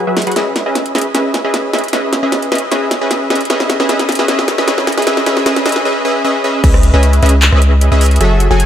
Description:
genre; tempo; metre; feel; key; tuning
future bass; 153 BPM; 4/4; half-time; C# minor; A4 = 435 Hz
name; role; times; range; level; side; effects
supersaw stab; riff; 0.0-8.7 s; F#3 to G#5; -14 LUFS; equal; sidechain pumping, low-pass filter, tape echo
pop drum kit; drums; 0.2-8.7 s; crash cymbal, handclaps, hi-hat, rim click, snare drum; -17 LUFS; equal; overdrive, high-pass filter on snare, high-pass filter on hats, high-pass filter on cymbals, high-pass filter on room
long sustained 808-style bass; bass; 6.6-8.7 s; F#1 to C#2; -10 LUFS; equal; sidechain pumping
electronic kick drum; drums; 6.6-6.7 s; none; -10 LUFS; equal; none
room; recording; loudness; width
moderate lush hall reverb, RT60 1.8 s; none; -11 LUFS; side -10 dB against mid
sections
0.0-6.6 A section; 6.6-8.7 B section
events
build-up 0.0-6.6; drum fill 0.0-5.9; filter sweep on supersaw synth 0.0-6.6; drop 6.6-8.7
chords
0.4 C#m9

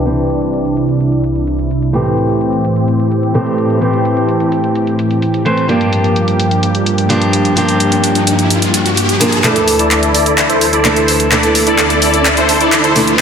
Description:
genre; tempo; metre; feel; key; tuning
EDM, festival progressive house; 128 BPM; 4/4; straight; D minor; A4 = 440 Hz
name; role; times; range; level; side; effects
fingerpicked old ladder-braced acoustic guitar; accompaniment; 0.0-13.2 s; G2 to D5; -15 LUFS; right 1 dB; tape echo
lush unison pad; sustained chords; 0.0-13.2 s; C2 to G4; -16 LUFS; equal; chorus, vintage 12-bit sampler grit
big-room dance drum kit; drums; 0.1-13.2 s; handclaps, hi-hat; -15 LUFS; equal; overdrive
riser; sound effects; 6.7-13.2 s; none; -21 LUFS; left 1 dB; none
supersaw chords; riff; 9.4-13.2 s; E4 to D5; -13 LUFS; equal; phaser, low-pass filter, tape echo
room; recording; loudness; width
wet scoring stage reverb, RT60 1.7 s; dense, heavily limited modern master, high-pass filter, low-pass filter; -10 LUFS; side -7 dB against mid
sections
0.0-9.4 A section; 9.4-13.2 B section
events
filter sweep 0.0-9.4; riser 6.7-9.4, 9.4-13.2; build-up 9.4-13.2; drum fill 9.4-13.2; filter sweep on supersaw synth 9.4-13.2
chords
0.0 Cadd9; 1.9 Am7; 5.7 Gm7; 9.4 Dsus2

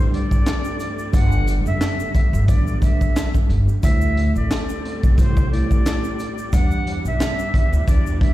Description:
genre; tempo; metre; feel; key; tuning
hip hop, boom-bap hip-hop; 89 BPM; 4/4; swing 56% on 16ths; unclear; A4 = 440 Hz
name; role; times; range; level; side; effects
jazz flute; melody; 0.0-8.3 s; C5 to F#5; -28 LUFS; equal; high-pass filter, low-pass filter, ping-pong delay
tine electric piano; accompaniment; 0.0-8.3 s; G2 to A2; -28 LUFS; right 1 dB; overdrive, fast stereo tremolo, cassette tape, high-pass filter, low-pass filter
warm studio string section; sustained chords; 0.0-8.3 s; D3 to D4; -32 LUFS; left 1 dB; high-pass filter, low-pass filter
upright bass; bass; 0.0-8.2 s; F#1 to E2; -20 LUFS; equal; none
crunchy breakbeat drum kit; drums; 0.1-8.3 s; handclaps, hi-hat, kick drum, snare drum; -18 LUFS; equal; none
egg shaker; percussion; 0.3-8.2 s; none; -43 LUFS; left 9 dB; none
room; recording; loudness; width
small room ambience; played on a big sound system in a bare room, large studio reverb; -17 LUFS; side -15 dB against mid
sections
0.0-8.3 A section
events
none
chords
0.0 Am7; 1.1 Gmaj9; 3.8 D7sus4; 6.5 Em7

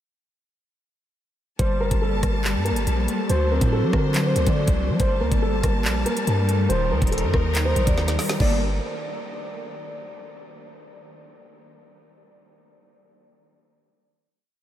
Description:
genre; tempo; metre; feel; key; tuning
hip hop, drill; 141 BPM; 4/4; half-time; G harmonic minor; A4 = 440 Hz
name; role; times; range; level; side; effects
dark concert grand piano; melody; 1.6-8.6 s; A4 to D5; -28 LUFS; left 1 dB; low-pass filter, analog delay
electric guitar at the edge of break-up; accompaniment; 1.6-8.6 s; Eb3 to D4; -29 LUFS; right 1 dB; ensemble chorus, low-pass filter
clear symphonic string section; sustained chords; 1.6-8.6 s; F#3 to A5; -30 LUFS; equal; none
long sustained 808-style bass; bass; 1.6-8.8 s; Eb1 to F#3; -23 LUFS; equal; none
drill drum kit; drums; 1.6-8.5 s; crash cymbal, handclaps, hi-hat, kick drum, rim click, snare drum; -26 LUFS; equal; none
room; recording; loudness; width
moderate huge ambient reverb, RT60 7.9 s; dreamy mix soaked in reverb; -19 LUFS; side -11 dB against mid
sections
1.6-8.4 hook; 8.4-10.1 final chord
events
drum fill 8.0-8.4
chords
1.6 Gmadd9; 3.3 D7; 5.0 Gmadd9; 6.7 Eb; 8.4 Gmadd9

